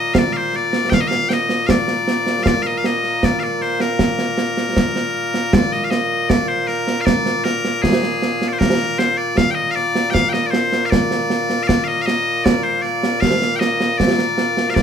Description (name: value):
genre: scottish traditional, Scottish pipe music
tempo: 78 BPM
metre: 2/4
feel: straight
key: Bb major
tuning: A4 = 440 Hz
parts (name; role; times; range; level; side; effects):
- loud bright bagpipes; melody; 0.0-14.8 s; Bb2 to G5; -18 LUFS; left 2 dB; none
- concert snare drum and concert bass drum; drums; 0.1-14.8 s; none; -18 LUFS; right 2 dB; none
room: wet studio reverb, RT60 0.5 s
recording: band playing live in one room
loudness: -15 LUFS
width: side -8 dB against mid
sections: 0.0-5.5 A section; 5.5-14.8 A section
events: none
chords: none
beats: 0.15 | 0.92 1.69 | 2.46 3.23 | 4.00 4.77 | 5.54 6.30 | 7.07 7.84 | 8.61 9.38 | 10.15 10.92 | 11.69 12.46 | 13.23 14.00 | 14.77